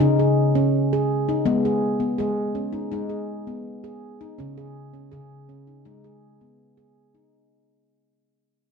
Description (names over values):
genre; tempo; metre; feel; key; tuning
world meditative; 82 BPM; 4/4; straight; G# minor pentatonic; A4 = 440 Hz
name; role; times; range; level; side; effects
handpan; arpeggios; 0.0-7.3 s; C#3 to G#4; -21 LUFS; left 1 dB; none
room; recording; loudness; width
wet echo chamber reverb, RT60 1.4 s, small room ambience; dark, warm production; -20 LUFS; side -5 dB against mid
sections
0.0-7.3 A section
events
fade-out 0.0-7.3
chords
0.0 C#5; 1.5 G#m; 4.4 C#5; 5.9 G#m